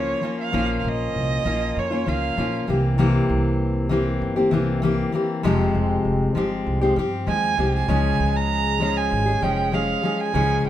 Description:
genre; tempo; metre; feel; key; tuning
acoustic pop; 98 BPM; 4/4; straight; unclear; A4 = 440 Hz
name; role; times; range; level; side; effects
rich violin; melody; 0.0-2.7, 7.3-10.7 s; Db5 to Bb5; -24 LUFS; right 6 dB; none
fingerpicked steel-string acoustic guitar; accompaniment; 0.0-10.7 s; F2 to Ab4; -22 LUFS; left 2 dB; none
upright bass; bass; 0.0-10.7 s; F1 to G2; -25 LUFS; right 1 dB; none
room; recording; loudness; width
moderate studio reverb, RT60 0.7 s; minimal, uncompressed stereo recording; -19 LUFS; side -12 dB against mid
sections
0.0-10.7 A section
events
none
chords
0.0 Bbm; 2.7 C7; 5.4 Fmadd9; 7.9 Db

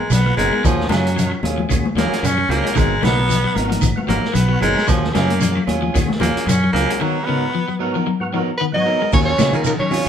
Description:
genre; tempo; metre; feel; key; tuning
afrobeat; 113 BPM; 4/4; swing 55% on 16ths; Eb minor; A4 = 440 Hz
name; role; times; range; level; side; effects
raspy baritone saxophone; melody; 0.0-7.8 s; F3 to Db4; -21 LUFS; equal; none
electric guitar at the edge of break-up; arpeggios; 0.0-10.0 s; Db3 to Ab3; -23 LUFS; left 6 dB; none
fingered electric bass; bass; 0.0-10.1 s; Gb1 to Eb3; -21 LUFS; right 1 dB; none
vintage drum kit; drums; 0.1-10.1 s; crash cymbal, hi-hat, kick drum, ride cymbal, snare drum; -22 LUFS; right 1 dB; none
claves; percussion; 0.1-9.9 s; none; -36 LUFS; left 1 dB; none
shekere; percussion; 0.1-10.1 s; none; -26 LUFS; right 3 dB; none
percussive tonewheel organ; accompaniment; 0.3-10.1 s; Ab2 to Db5; -30 LUFS; left 1 dB; slow rotary speaker, chorus vibrato
electric guitar at the edge of break-up; stabs; 0.4-10.1 s; Gb3 to Bb4; -24 LUFS; right 4 dB; none
congas; percussion; 0.4-10.1 s; none; -25 LUFS; left 4 dB; none
clear soprano saxophone; melody; 8.6-10.1 s; Bb4 to Eb5; -20 LUFS; equal; none
clear trombone; second line; 8.6-10.1 s; Bb3 to Eb4; -25 LUFS; right 3 dB; none
room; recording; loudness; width
moderate studio reverb, RT60 0.7 s; band playing live in one room; -15 LUFS; side -8 dB against mid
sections
0.0-9.1 A section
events
baritone saxophone solo 0.0-9.1; break 7.0-9.1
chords
0.0 Abm9; 0.6 Ebm11; 2.8 Abm9; 4.9 Ebm11; 7.0 Abm9; 9.1 Ebm11

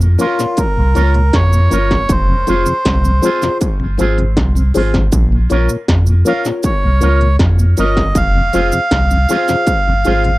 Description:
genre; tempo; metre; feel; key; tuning
roots reggae; 79 BPM; 4/4; straight; Bb dorian; A4 = 441 Hz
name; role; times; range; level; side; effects
mellow tonewheel organ; accompaniment; 0.0-10.3 s; F2 to Db4; -18 LUFS; left 1 dB; slow rotary speaker
warm sub bass; bass; 0.0-10.4 s; F1 to F2; -13 LUFS; equal; none
cabasa; percussion; 0.0-10.2 s; none; -29 LUFS; right 7 dB; none
melodica; melody; 0.2-10.4 s; F4 to F5; -18 LUFS; right 1 dB; tape echo
electric guitar with an envelope filter; accompaniment; 0.2-10.3 s; C4 to Bb4; -26 LUFS; right 6 dB; spring reverb, tape echo
dark upright piano; stabs; 0.2-10.3 s; F4 to Db5; -19 LUFS; left 3 dB; none
industrial drum kit; drums; 0.2-10.4 s; hi-hat, kick drum, snare drum; -17 LUFS; equal; distortion
room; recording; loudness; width
little or no reverb; dry, close 1970s-style studio recording; -11 LUFS; side -18 dB against mid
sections
0.0-10.4 A section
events
none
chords
0.0 Bbm; 2.1 Fm; 5.1 Bbm; 8.2 Fm

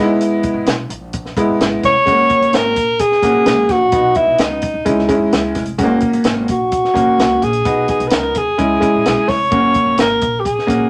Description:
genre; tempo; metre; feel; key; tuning
uptempo 1960s-style soul; 129 BPM; 4/4; straight; F# mixolydian; A4 = 440 Hz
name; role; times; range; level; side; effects
bright concert grand piano; accompaniment; 0.0-10.9 s; G#3 to F#4; -19 LUFS; equal; none
upright bass; bass; 0.0-10.9 s; E#1 to E2; -29 LUFS; equal; none
compact cocktail drum kit; drums; 0.2-10.8 s; hi-hat, kick drum, snare drum; -22 LUFS; equal; none
breathy alto saxophone; melody; 1.9-10.9 s; D#4 to C#5; -16 LUFS; equal; none
room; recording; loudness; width
wet small room reverb, RT60 0.5 s; none; -15 LUFS; mono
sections
0.0-2.1 A section; 2.1-10.9 B section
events
none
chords
0.0 E; 2.1 F#; 3.9 B; 4.9 C#m; 5.8 F#; 7.7 B; 8.6 C#m; 9.5 F#

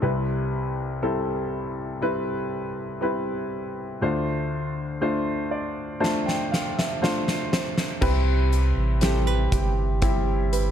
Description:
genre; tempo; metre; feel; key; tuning
pop ballad; 60 BPM; 4/4; straight; C major; A4 = 441 Hz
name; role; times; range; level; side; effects
clear concert grand piano; accompaniment; 0.0-10.7 s; C2 to A5; -25 LUFS; left 1 dB; none
huge arena drum kit; drums; 6.0-10.7 s; crash cymbal, hi-hat, kick drum, snare drum; -26 LUFS; equal; none
nylon-string guitar; arpeggios; 8.0-10.7 s; C3 to B4; -31 LUFS; right 7 dB; none
saturated sub bass; bass; 8.0-10.7 s; G1 to C2; -22 LUFS; equal; none
room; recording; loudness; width
light reverb, studio reverb; dark, warm production; -23 LUFS; side -9 dB against mid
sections
0.0-8.0 A section; 8.0-10.7 B section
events
grand piano fill 5.0-8.0; drum fill 6.0-8.0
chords
0.0 Cmaj7; 4.0 Dm7; 8.0 Cmaj7

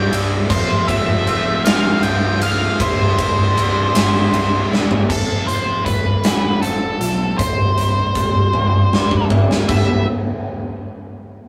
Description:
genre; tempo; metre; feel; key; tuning
quiet-loud alternative rock; 52 BPM (dotted quarters); 6/8; straight; C major; A4 = 440 Hz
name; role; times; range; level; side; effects
octave-fuzz lead guitar; melody; 0.0-10.0 s; A4 to G5; -23 LUFS; equal; distortion
raw garage guitar; riff; 0.0-5.6 s; C2 to F4; -24 LUFS; equal; overdrive
fuzz picked electric bass; bass; 0.0-10.0 s; C1 to B1; -24 LUFS; equal; overdrive
huge arena drum kit; drums; 0.1-9.9 s; crash cymbal, hi-hat, kick drum, ride cymbal, snare drum, toms; -20 LUFS; equal; none
electric guitar through a small old amp; arpeggios; 5.1-10.1 s; C2 to E4; -29 LUFS; equal; phaser
room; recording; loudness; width
light reverb; rough rehearsal-room recording, small room reverb; -17 LUFS; mono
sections
0.0-5.1 A section; 5.1-9.7 B section; 9.7-11.5 C section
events
drum fill 4.7-5.1, 8.5-9.7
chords
0.0 C; 0.5 F; 2.8 C; 5.1 F; 7.4 C5; 9.7 C

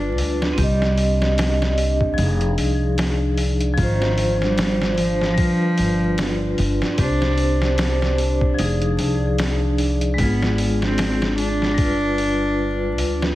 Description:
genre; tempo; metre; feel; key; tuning
trip hop; 75 BPM; 4/4; swing 57% on 16ths; C harmonic minor; A4 = 439 Hz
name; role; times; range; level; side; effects
rich cello; melody; 0.0-13.2 s; Eb3 to D4; -24 LUFS; equal; vintage 12-bit sampler grit, tape echo
vibraphone with hard mallets; accompaniment; 0.0-13.3 s; F3 to Eb5; -23 LUFS; left 1 dB; tremolo, tape echo
dark analog pad; sustained chords; 0.0-13.3 s; D4; -28 LUFS; right 2 dB; chorus, phaser
upright bass; bass; 0.0-13.3 s; F1 to D2; -22 LUFS; equal; none
trip hop sampler-style drum kit; drums; 0.2-13.3 s; hi-hat, kick drum, snare drum; -25 LUFS; equal; none
room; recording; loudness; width
small room ambience; heavily compressed radio sound, multiband compression, vinyl crackle; -17 LUFS; side -16 dB against mid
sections
0.0-13.3 A section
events
none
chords
0.0 G7; 0.6 Cm; 2.2 Fm7; 3.8 Ab6; 5.4 G7; 7.0 C5; 8.6 Fm7; 10.2 G#dim7; 11.8 G7

